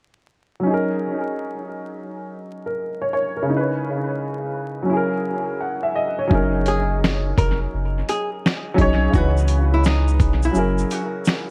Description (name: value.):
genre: lo-fi hip hop.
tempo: 85 BPM.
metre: 4/4.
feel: swing 65% on 16ths.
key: F# major.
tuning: A4 = 441 Hz.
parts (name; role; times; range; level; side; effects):
warm upright piano; accompaniment; 0.6-11.5 s; C#3 to F#5; -24 LUFS; equal; cassette tape, analog delay.
warm sub bass; bass; 6.3-10.8 s; E#1 to C#2; -23 LUFS; equal; none.
dusty soul sampler-style drum kit; drums; 6.3-11.5 s; finger snaps, hi-hat, kick drum, shaker, snare drum; -23 LUFS; equal; overdrive, analog delay.
archtop guitar, miked and amplified; melody; 6.7-11.5 s; D#4 to A#4; -29 LUFS; equal; analog delay.
room: light reverb.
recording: echo-heavy mix, vinyl crackle.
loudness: -21 LUFS.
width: mono.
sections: 0.7-6.3 A section; 6.3-11.5 B section.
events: none.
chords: 0.7 F#69; 3.5 C#m9; 4.9 F#7; 6.3 F#69; 9.1 C#m9; 10.5 F#7.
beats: | 0.66 1.37 2.07 2.78 | 3.48 4.19 4.90 5.60 | 6.31 7.01 7.72 8.43 | 9.13 9.84 10.54 11.25.